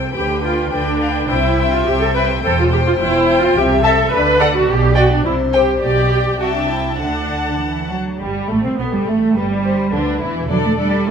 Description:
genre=quick classical-period movement for string orchestra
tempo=105 BPM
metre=2/4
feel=rubato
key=C major, G major from 3.6 s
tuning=A4 = 444 Hz
part: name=muted chamber violin section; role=melody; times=0.0-11.1 s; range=A4 to G5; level=-23 LUFS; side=left 6 dB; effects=none
part: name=muted chamber violin section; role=second line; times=0.0-11.1 s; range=G3 to A5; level=-21 LUFS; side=left 3 dB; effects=none
part: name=muted chamber cello section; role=bass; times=0.0-11.1 s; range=E2 to C4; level=-21 LUFS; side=right 2 dB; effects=none
part: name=muted chamber double bass section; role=bass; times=0.0-11.1 s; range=E1 to D2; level=-22 LUFS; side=right 3 dB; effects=none
part: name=muted studio viola section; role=accompaniment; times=0.2-11.1 s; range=D3 to B4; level=-19 LUFS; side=right 2 dB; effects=none
room=wet recital hall reverb, RT60 1.6 s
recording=minimal, uncompressed stereo recording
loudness=-14 LUFS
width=side -7 dB against mid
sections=0.0-8.2 A section; 8.2-11.1 B section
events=none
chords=0.2 G/D; 1.3 C; 2.4 C/E; 3.6 Am7/C; 4.1 D; 4.7 G/B; 5.2 C5; 5.8 G/B; 6.4 Am7/C; 7.0 D; 8.2 Gsus24; 8.8 Gadd9; 9.4 G; 10.5 D5

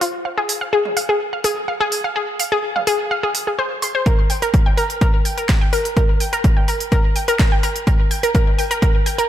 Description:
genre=melodic techno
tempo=126 BPM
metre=4/4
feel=straight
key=unclear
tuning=A4 = 441 Hz
part: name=analog pluck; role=arpeggios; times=0.0-9.3 s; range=F4 to C6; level=-19 LUFS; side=equal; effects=chorus, sidechain pumping, ping-pong delay
part: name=techno drum kit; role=drums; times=0.0-9.3 s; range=hi-hat, snare drum, toms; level=-25 LUFS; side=right 2 dB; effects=high-pass filter on hats, high-pass filter on toms, high-pass filter on snare, high-pass filter on room
part: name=electronic kick drum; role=drums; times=4.1-8.9 s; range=none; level=-16 LUFS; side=equal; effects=none
room=light reverb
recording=none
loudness=-16 LUFS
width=side -11 dB against mid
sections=0.0-9.3 A section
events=build-up 0.0-9.3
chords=none

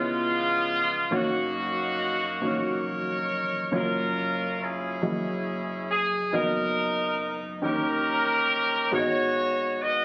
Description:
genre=gospel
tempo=46 BPM (dotted quarters)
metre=6/8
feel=straight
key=F# major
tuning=A4 = 436 Hz
part: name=clear horn section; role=melody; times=0.0-10.0 s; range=G#3 to D#5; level=-28 LUFS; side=equal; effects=none
part: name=warm upright piano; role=accompaniment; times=0.0-10.0 s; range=F#1 to D#5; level=-32 LUFS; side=equal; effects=none
room=light reverb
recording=recorded on a phone in the room, club reverb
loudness=-27 LUFS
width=mono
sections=0.0-3.7 A section; 3.7-10.0 A section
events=none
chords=0.0 C#7; 1.1 F#6; 3.7 F#maj7; 5.0 F#13; 6.3 Bmaj7/F#; 7.6 D#7; 8.9 G#m7

